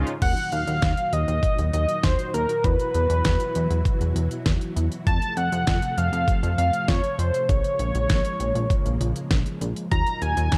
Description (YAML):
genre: synth-pop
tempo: 99 BPM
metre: 4/4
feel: straight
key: unclear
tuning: A4 = 440 Hz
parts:
  - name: string machine, cellos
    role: sustained chords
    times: 0.0-10.6 s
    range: Bb2 to Bb4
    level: -35 LUFS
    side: equal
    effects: ensemble chorus
  - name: chorused synth bass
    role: bass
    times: 0.0-10.6 s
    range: Bb1 to F2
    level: -27 LUFS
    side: equal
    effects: none
  - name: pop drum kit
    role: drums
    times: 0.1-10.6 s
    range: crash cymbal, hi-hat, kick drum, snare drum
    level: -26 LUFS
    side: equal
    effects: none
  - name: unison lead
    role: melody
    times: 0.2-10.6 s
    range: Bb4 to Bb5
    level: -28 LUFS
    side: equal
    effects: analog delay
  - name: kalimba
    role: arpeggios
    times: 9.9-10.6 s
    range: Eb4 to F4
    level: -38 LUFS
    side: equal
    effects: analog delay
room: light reverb, digital ambience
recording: dark, warm production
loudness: -23 LUFS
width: mono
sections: 0.2-10.6 A section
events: none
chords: 0.2 Ebm; 2.6 Esus2; 5.1 F; 7.5 Bbm7; 9.9 Ebm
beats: | 0.22 0.82 1.43 2.04 | 2.64 3.25 3.85 4.46 | 5.07 5.67 6.28 6.89 | 7.49 8.10 8.70 9.31 | 9.92 10.52